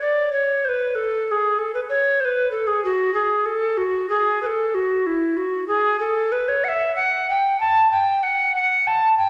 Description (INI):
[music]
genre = classical, baroque-style fantasia for unaccompanied recorder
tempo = 63 BPM (dotted quarters)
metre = 12/8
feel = rubato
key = A major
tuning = A4 = 441 Hz
[part]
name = hollow tenor recorder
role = solo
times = 0.0-9.3 s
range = E4 to A5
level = -20 LUFS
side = equal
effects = none
[sound]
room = wet recital hall reverb, RT60 1.5 s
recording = none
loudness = -21 LUFS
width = mono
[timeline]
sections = 0.0-9.3 A section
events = none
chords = none